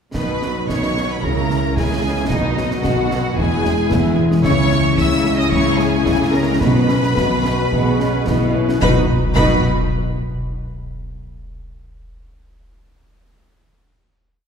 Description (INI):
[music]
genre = cinematic, heroic adventure film score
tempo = 112 BPM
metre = 4/4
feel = straight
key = B major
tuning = A4 = 440 Hz
[part]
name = clear symphonic violin section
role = second line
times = 0.1-9.7 s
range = D#4 to E5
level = -24 LUFS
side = left 2 dB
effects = none
[part]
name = warm symphonic viola section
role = accompaniment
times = 0.1-9.7 s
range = D#3 to B4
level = -24 LUFS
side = equal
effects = none
[part]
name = mellow French horn section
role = sustained chords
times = 0.1-9.0 s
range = F#3 to G#4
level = -23 LUFS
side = left 7 dB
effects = none
[part]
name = rich symphonic cello section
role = bass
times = 0.1-9.7 s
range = E2 to C#3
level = -23 LUFS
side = right 2 dB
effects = none
[part]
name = rich symphonic double bass section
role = bass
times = 0.1-9.7 s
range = E1 to C#2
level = -22 LUFS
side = right 3 dB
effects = none
[part]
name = concert snare drum, clash cymbals and concert bass drum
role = drums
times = 0.1-9.7 s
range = none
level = -23 LUFS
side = equal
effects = none
[part]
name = rich symphonic violin section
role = melody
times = 0.2-9.7 s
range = D#5 to E6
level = -26 LUFS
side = left 1 dB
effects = none
[part]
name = timpani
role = percussion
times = 6.6-9.6 s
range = B2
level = -22 LUFS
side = left 1 dB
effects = none
[sound]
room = wet scoring stage reverb, RT60 2.0 s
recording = heard from further back in the room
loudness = -15 LUFS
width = side -6 dB against mid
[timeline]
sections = 0.1-8.8 theme; 8.8-11.0 final chord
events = none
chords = 0.1 B; 1.2 C#m; 2.3 B; 3.4 E; 4.4 C#m; 6.6 Bsus2; 8.8 B